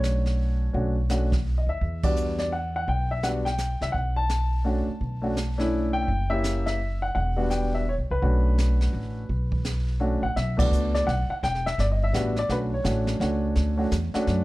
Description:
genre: jazz piano trio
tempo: 168 BPM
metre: 3/4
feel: swing 63% on 8ths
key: B minor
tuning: A4 = 440 Hz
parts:
  - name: warm upright piano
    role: melody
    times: 0.0-14.4 s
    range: G3 to A5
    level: -27 LUFS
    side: equal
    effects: plate reverb
  - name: upright bass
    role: bass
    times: 0.0-14.4 s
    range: E1 to F#2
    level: -25 LUFS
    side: equal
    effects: none
  - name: jazz brush drum kit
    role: drums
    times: 0.0-14.4 s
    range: brushed snare drum, hi-hat, kick drum, ride cymbal, snare drum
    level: -30 LUFS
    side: right 1 dB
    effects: none
room: little or no reverb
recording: dark, warm production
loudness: -23 LUFS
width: side -18 dB against mid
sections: 0.0-10.4 A section; 10.4-14.4 A section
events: band accent 2.0, 10.5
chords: 0.0 Bm9; 1.8 Em7; 3.9 Bm9; 6.1 F#7b9; 7.2 Em7; 8.2 Bm9; 11.4 Em7; 12.5 Bm9

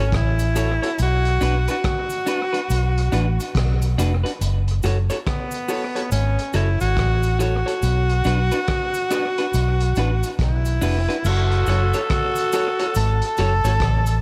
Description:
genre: roots reggae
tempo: 70 BPM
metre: 4/4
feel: swing 61% on 16ths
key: F# minor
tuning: A4 = 440 Hz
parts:
  - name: clear tenor saxophone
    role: melody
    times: 0.0-14.2 s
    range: B3 to A4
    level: -26 LUFS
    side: equal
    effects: tape echo
  - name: electric guitar at the edge of break-up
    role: accompaniment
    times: 0.0-13.7 s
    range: D4 to C#5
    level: -30 LUFS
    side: equal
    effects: tape echo
  - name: vintage muted fingered electric bass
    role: bass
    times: 0.0-14.2 s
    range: E#1 to B1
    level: -22 LUFS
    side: equal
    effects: none
  - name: crunchy breakbeat drum kit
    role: drums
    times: 0.1-14.2 s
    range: crash cymbal, hi-hat, kick drum, rim click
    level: -30 LUFS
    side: equal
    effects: analog delay
  - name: cabasa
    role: percussion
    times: 0.4-14.2 s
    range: none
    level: -41 LUFS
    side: equal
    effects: none
  - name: growling tenor saxophone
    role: second line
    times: 11.2-14.2 s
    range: A4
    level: -28 LUFS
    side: equal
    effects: tape echo
room: light reverb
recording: echo-heavy mix, vinyl crackle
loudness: -21 LUFS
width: mono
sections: 0.0-11.2 A section; 11.2-14.2 B section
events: none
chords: 0.0 F#m; 1.0 Bm; 4.4 F#m; 7.8 Bm; 11.2 F#m

